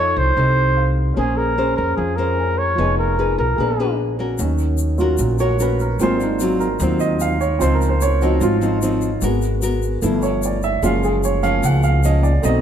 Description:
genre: bossa nova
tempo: 149 BPM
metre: 4/4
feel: straight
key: Bb minor, Eb minor from 4.4 s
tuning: A4 = 440 Hz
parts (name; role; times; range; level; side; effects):
- warm flugelhorn; melody; 0.0-4.0 s; Ab4 to Db5; -20 LUFS; right 1 dB; none
- nylon-string guitar; accompaniment; 0.0-12.6 s; Gb2 to Db5; -22 LUFS; left 2 dB; none
- warm baby grand piano; accompaniment; 0.0-12.6 s; Gb3 to Bb5; -22 LUFS; right 4 dB; none
- upright bass; bass; 0.0-12.6 s; F1 to F2; -20 LUFS; equal; none
- tube shaker; percussion; 4.4-12.6 s; none; -33 LUFS; left 7 dB; none
room: moderate echo chamber reverb, RT60 1.4 s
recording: heard from further back in the room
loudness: -16 LUFS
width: side -9 dB against mid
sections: 0.0-4.4 A section; 4.4-12.6 B section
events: grand piano fill 0.6-1.2; grand piano solo 4.4-12.6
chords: 0.0 F7b13; 1.2 Bbm9; 2.8 Fm7b5; 3.6 Bb7b9; 4.4 Ebm7; 6.0 Ab13; 7.6 Dbmaj9; 9.2 Abm9; 10.0 G13; 10.8 Gbmaj7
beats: 0.36 0.77 | 1.17 1.57 1.98 2.38 | 2.78 3.18 3.59 3.99 | 4.39 4.79 5.20 5.60 | 6.00 6.41 6.81 7.21 | 7.61 8.02 8.42 8.82 | 9.22 9.62 10.03 10.43 | 10.83 11.23 11.64 12.04 | 12.44

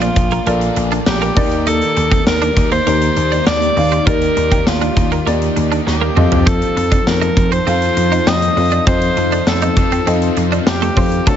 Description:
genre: 1980s-style pop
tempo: 100 BPM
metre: 4/4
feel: straight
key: unclear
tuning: A4 = 440 Hz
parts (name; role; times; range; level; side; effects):
- clear alto saxophone; melody; 0.0-11.4 s; F4 to Eb5; -18 LUFS; equal; digital delay
- dark baby grand piano; accompaniment; 0.0-11.4 s; Bb2 to A5; -22 LUFS; left 4 dB; none
- overdriven semi-hollow guitar; accompaniment; 0.0-11.4 s; Bb2 to F4; -26 LUFS; left 1 dB; analog chorus
- string machine, full ensemble; sustained chords; 0.0-11.4 s; D3 to A5; -22 LUFS; equal; ensemble chorus
- twelve-string electric guitar; riff; 0.0-11.4 s; A3 to Eb4; -24 LUFS; right 8 dB; wide subtle chorus
- vintage slap bass; bass; 0.0-11.4 s; Bb1 to F2; -18 LUFS; equal; none
- big rock drum kit; drums; 0.0-11.4 s; hi-hat, kick drum, snare drum, tambourine, toms; -18 LUFS; equal; gated reverb
room: studio reverb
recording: nothing above 7.7 kHz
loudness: -12 LUFS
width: side -9 dB against mid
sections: 0.0-11.4 A section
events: drum fill 5.9-6.5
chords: 0.0 Bbmaj7; 1.4 Ebmaj7; 6.2 F7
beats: 0.47 1.07 | 1.67 2.27 2.87 3.47 | 4.07 4.67 5.27 5.87 | 6.47 7.07 7.67 8.27 | 8.87 9.47 10.07 10.67 | 11.27

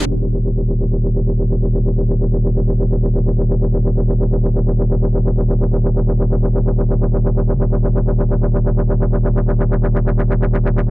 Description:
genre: house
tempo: free time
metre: none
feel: none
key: unclear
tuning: A4 = 444 Hz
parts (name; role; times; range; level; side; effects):
- metallic wobble bass; bass; 0.0-10.9 s; Eb1; -14 LUFS; equal; chorus, tube saturation
room: digital ambience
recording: low-pass filter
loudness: -14 LUFS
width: side -27 dB against mid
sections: 0.1-10.9 A section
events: none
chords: none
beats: free time

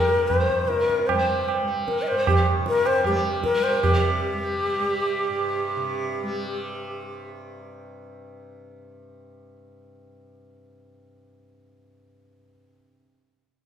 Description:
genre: indian classical, Hindustani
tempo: 154 BPM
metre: 7/4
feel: straight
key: unclear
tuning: A4 = 444 Hz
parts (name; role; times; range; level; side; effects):
- breathy hollow bansuri; melody; 0.0-7.3 s; G4 to Eb5+20c; -24 LUFS; left 3 dB; none
- breathy pan flute; second line; 0.0-7.4 s; G4 to C5; -29 LUFS; right 2 dB; none
- tanpura; drone; 0.0-12.9 s; G2 to G3; -34 LUFS; equal; none
- tabla; percussion; 0.3-4.0 s; none; -24 LUFS; right 4 dB; none
room: wet recital hall reverb, RT60 1.8 s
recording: minimal, uncompressed stereo recording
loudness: -21 LUFS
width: side -9 dB against mid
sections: 0.0-3.8 A section; 3.8-6.5 B section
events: speeding up 0.0-6.5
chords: none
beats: 0.30 0.70 | 1.09 1.49 1.88 2.28 2.67 3.06 3.45 | 3.84 4.23 4.61 5.00 5.39 5.77 6.15

